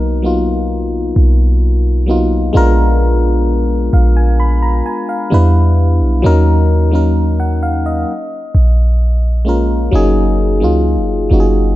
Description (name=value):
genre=contemporary R&B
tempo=65 BPM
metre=4/4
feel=straight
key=unclear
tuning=A4 = 445 Hz
part: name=FM electric piano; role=accompaniment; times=0.0-11.8 s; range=F#3 to Cb6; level=-16 LUFS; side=left 1 dB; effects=chorus
part: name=clean 808-style bass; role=bass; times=0.0-11.8 s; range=Gb1 to E2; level=-12 LUFS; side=equal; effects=none
room=light reverb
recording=dark, warm production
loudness=-11 LUFS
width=side -16 dB against mid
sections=0.0-9.9 A section; 9.9-11.8 B section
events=none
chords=0.0 Bmaj7; 2.5 Bb7b9; 5.3 Em7; 6.2 Ebm7; 8.1 Bbm7; 9.9 Gb69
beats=0.70 1.62 | 2.55 3.47 4.39 5.32 | 6.24 7.16 8.09 9.01 | 9.93 10.85